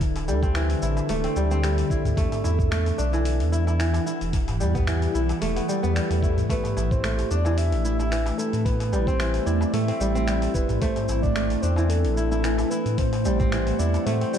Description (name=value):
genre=organic downtempo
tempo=111 BPM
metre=4/4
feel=swing 54% on 16ths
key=A dorian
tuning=A4 = 442 Hz
part: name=ethereal airy pad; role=sustained chords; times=0.0-14.4 s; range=D3 to G5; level=-29 LUFS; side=right 1 dB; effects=ensemble chorus, built-in reverb, phaser, sidechain pumping
part: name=kora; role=arpeggios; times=0.0-14.4 s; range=E3 to E4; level=-28 LUFS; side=equal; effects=ping-pong delay
part: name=warm sub bass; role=bass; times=0.0-14.2 s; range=D1 to A2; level=-24 LUFS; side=equal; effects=tube saturation, sidechain pumping
part: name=dusty soul sampler-style drum kit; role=drums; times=0.0-14.4 s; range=finger snaps, hi-hat, shaker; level=-35 LUFS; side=equal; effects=none
part: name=electronic kick drum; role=drums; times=0.0-13.5 s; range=none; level=-26 LUFS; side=equal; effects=none
part: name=darbuka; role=percussion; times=0.0-14.0 s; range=none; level=-34 LUFS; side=left 1 dB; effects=none
part: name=swell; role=sound effects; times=5.7-6.5 s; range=none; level=-35 LUFS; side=left 3 dB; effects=none
part: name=breathy flute-like synth lead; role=melody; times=6.5-14.4 s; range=A4 to E5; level=-30 LUFS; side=left 1 dB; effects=chorus, ping-pong delay
room=light reverb, digital ambience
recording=dark, warm production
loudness=-21 LUFS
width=side -9 dB against mid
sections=0.0-14.4 A section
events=swell 5.7-6.5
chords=0.0 Dsus2; 2.2 Emadd9